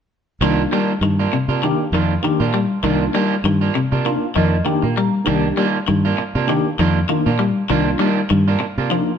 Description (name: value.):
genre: afrobeat.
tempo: 99 BPM.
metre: 4/4.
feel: swing 55% on 16ths.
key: C minor.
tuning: A4 = 440 Hz.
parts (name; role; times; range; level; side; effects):
mellow tine electric piano; accompaniment; 0.4-9.1 s; Bb3 to Bb5; -22 LUFS; equal; overdrive, fast stereo tremolo.
electric guitar at the edge of break-up; arpeggios; 0.4-9.1 s; C3 to G3; -20 LUFS; left 5 dB; none.
electric guitar at the edge of break-up; stabs; 0.4-9.0 s; Eb3 to F4; -22 LUFS; right 7 dB; spring reverb.
fingered electric bass; bass; 0.4-9.0 s; C2 to C3; -19 LUFS; equal; none.
room: moderate stone room reverb, RT60 1.2 s.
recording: band playing live in one room.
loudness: -16 LUFS.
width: side -8 dB against mid.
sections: 0.4-9.2 A section.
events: tine electric piano fill 4.1-5.3.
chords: 0.4 Cm11.